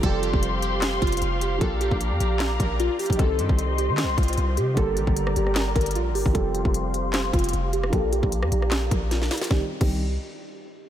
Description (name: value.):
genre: hip hop, trap.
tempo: 152 BPM.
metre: 4/4.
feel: half-time.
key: C minor.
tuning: A4 = 440 Hz.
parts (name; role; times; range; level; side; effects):
glassy digital keys; melody; 0.0-10.0 s; F4 to Bb4; -28 LUFS; right 2 dB; chorus, low-pass filter, diffuse ambient delay.
felt-muted upright piano; accompaniment; 0.0-10.0 s; D3 to G4; -32 LUFS; right 2 dB; lush chorus, low-pass filter.
muted studio string section; sustained chords; 0.0-9.7 s; C3 to C6; -31 LUFS; left 2 dB; low-pass filter.
warm 808-style bass; bass; 0.0-10.2 s; F1 to Eb3; -26 LUFS; equal; none.
trap drum kit; drums; 0.0-9.9 s; crash cymbal, handclaps, hi-hat, kick drum, rim click, snare drum; -26 LUFS; equal; none.
room: light reverb.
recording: none.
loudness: -21 LUFS.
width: side -10 dB against mid.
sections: 0.0-9.5 A section; 9.5-10.9 B section.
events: filter sweep 0.0-9.5; drum fill 9.1-9.5.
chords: 0.0 Fsus2; 1.6 Bb6; 3.2 Cm; 4.8 Gm; 6.3 Fsus2; 7.9 Bb6; 9.5 Cm.